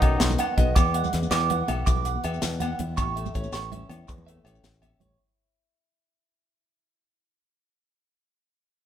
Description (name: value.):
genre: highlife guitar band.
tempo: 108 BPM (dotted quarters).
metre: 12/8.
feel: straight.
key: E major.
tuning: A4 = 440 Hz.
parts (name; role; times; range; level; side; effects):
warm trumpet; melody; 0.0-0.5 s; D#4; -30 LUFS; equal; none.
trombone with plunger mute; second line; 0.0-0.5 s; F#2; -36 LUFS; left 5 dB; none.
picked acoustic archtop guitar; accompaniment; 0.0-7.4 s; E2 to F#4; -36 LUFS; left 6 dB; none.
fingered electric bass; bass; 0.0-5.2 s; A1 to E2; -28 LUFS; equal; none.
tight funk drum kit; drums; 0.0-5.1 s; hi-hat, kick drum, snare drum; -24 LUFS; equal; none.
agogo bells; percussion; 0.0-5.0 s; none; -36 LUFS; left 4 dB; none.
congas; percussion; 0.2-5.1 s; none; -35 LUFS; right 2 dB; none.
maracas; percussion; 0.2-4.9 s; none; -38 LUFS; left 8 dB; none.
clean electric guitar; arpeggios; 0.4-5.2 s; C#5 to D6; -29 LUFS; right 7 dB; spring reverb.
room: light reverb.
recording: band playing live in one room.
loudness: -22 LUFS.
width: side -10 dB against mid.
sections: 0.8-5.2 A section.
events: fade-out 0.8-5.2.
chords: 0.0 B; 0.8 Eadd9; 3.0 A.